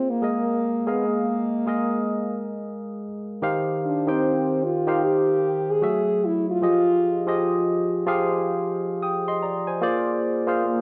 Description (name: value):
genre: R&B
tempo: 75 BPM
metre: 4/4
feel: swing 63% on 16ths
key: Eb major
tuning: A4 = 440 Hz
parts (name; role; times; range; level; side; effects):
- mellow French horn; melody; 0.0-10.8 s; Bb3 to Ab4; -26 LUFS; equal; none
- barky tine electric piano; accompaniment; 0.0-10.8 s; Eb3 to Eb6; -26 LUFS; equal; overdrive, subtle chorus
room: moderate echo chamber reverb, RT60 1.9 s, small room ambience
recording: worn, warbling old tape, cassette tape, warbly pitch drift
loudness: -23 LUFS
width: mono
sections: 0.0-10.8 A section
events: none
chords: 0.2 Absus2; 3.4 Eb69; 5.8 Gbm9; 6.6 Fm9; 9.8 Bb9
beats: | 0.22 1.02 1.82 2.62 | 3.42 4.22 5.02 5.82 | 6.62 7.42 8.22 9.02 | 9.82 10.62